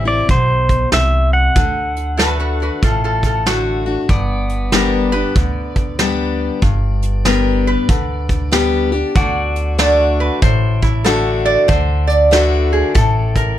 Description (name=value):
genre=honky-tonk and classic country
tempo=95 BPM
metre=4/4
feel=swing 64% on 8ths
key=G major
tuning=A4 = 440 Hz
part: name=pedal steel guitar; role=melody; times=0.0-3.4 s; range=C5 to F#5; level=-18 LUFS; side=right 1 dB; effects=none
part: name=picked steel-string acoustic guitar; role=accompaniment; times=0.0-13.6 s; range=G2 to G4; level=-19 LUFS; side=left 5 dB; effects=none
part: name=upright bass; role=bass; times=0.0-13.6 s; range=G1 to D2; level=-18 LUFS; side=equal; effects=none
part: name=soft brush drum kit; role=drums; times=0.3-13.5 s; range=hi-hat, kick drum, snare drum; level=-17 LUFS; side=right 1 dB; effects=none
part: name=lap resonator guitar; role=second line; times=2.2-13.6 s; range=E4 to F#5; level=-19 LUFS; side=right 3 dB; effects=none
part: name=pedal steel guitar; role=sustained chords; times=4.1-13.6 s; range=B3 to D5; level=-29 LUFS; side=equal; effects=none
room=little or no reverb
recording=close, detailed microphones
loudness=-13 LUFS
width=side -12 dB against mid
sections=0.0-4.1 A section; 4.1-13.6 B section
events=resonator guitar played with a steel bar solo 4.1-13.6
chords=0.0 C; 1.6 D; 4.1 G; 9.2 D